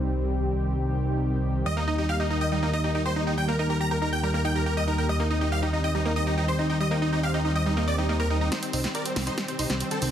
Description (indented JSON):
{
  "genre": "uplifting trance",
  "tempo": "140 BPM",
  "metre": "4/4",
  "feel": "straight",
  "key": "unclear",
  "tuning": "A4 = 439 Hz",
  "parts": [
    { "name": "lush unison pad", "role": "sustained chords", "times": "0.0-10.1 s", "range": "Eb3 to G4", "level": "-30 LUFS", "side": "left 1 dB", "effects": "chorus" },
    { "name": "fat analog bass", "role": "bass", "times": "0.0-10.1 s", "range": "C2 to Eb2", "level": "-27 LUFS", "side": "equal", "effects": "none" },
    { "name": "big supersaw lead", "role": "melody", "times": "1.7-10.1 s", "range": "C4 to Bb5", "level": "-28 LUFS", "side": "equal", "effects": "tape echo" },
    { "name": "analog pluck", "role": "arpeggios", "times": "1.7-10.1 s", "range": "G3 to G5", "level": "-32 LUFS", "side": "right 3 dB", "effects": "chorus, vintage 12-bit sampler grit, dub echo" },
    { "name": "punchy analog drum machine", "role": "drums", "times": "8.5-10.1 s", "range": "hi-hat, snare drum", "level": "-30 LUFS", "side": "equal", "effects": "none" },
    { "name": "riser", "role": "sound effects", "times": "9.1-10.1 s", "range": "none", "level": "-46 LUFS", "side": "right 2 dB", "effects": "none" }
  ],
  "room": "light reverb",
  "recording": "dense, heavily limited modern master",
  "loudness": "-23 LUFS",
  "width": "side -10 dB against mid",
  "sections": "0.0-8.5 A section; 8.5-10.1 B section",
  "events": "build-up 8.5-10.1; drum fill 8.5-10.1; filter sweep on synth pluck 8.5-10.1",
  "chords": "0.0 Cm; 1.7 Eb; 8.5 Cm"
}